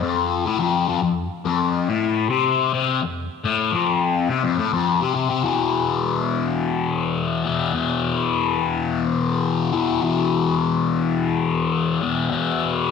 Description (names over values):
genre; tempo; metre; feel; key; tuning
rock; 105 BPM; 4/4; straight; unclear; A4 = 438 Hz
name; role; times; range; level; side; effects
fuzz guitar; solo; 0.0-12.9 s; E2 to E3; -19 LUFS; left 6 dB; distortion, phaser
room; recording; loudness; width
moderate echo chamber reverb, RT60 1.8 s, digital ambience; none; -19 LUFS; side -6 dB against mid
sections
0.0-5.4 A section; 5.4-12.9 B section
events
none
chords
0.0 F5; 5.4 E5